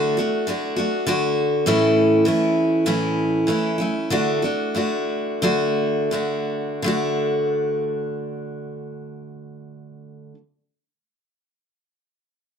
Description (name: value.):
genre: country.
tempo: 81-101 BPM.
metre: 4/4.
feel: straight.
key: D major.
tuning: A4 = 439 Hz.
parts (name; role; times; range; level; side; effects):
picked steel-string acoustic guitar; solo; 0.0-10.4 s; A2 to F#4; -20 LUFS; equal; none.
room: moderate studio reverb, RT60 0.7 s.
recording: none.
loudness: -19 LUFS.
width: side -7 dB against mid.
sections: 0.0-1.7 A section; 1.7-6.8 B section; 6.8-9.8 C section.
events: slowing down 1.7-6.8.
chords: 0.0 D; 1.7 A; 4.1 D.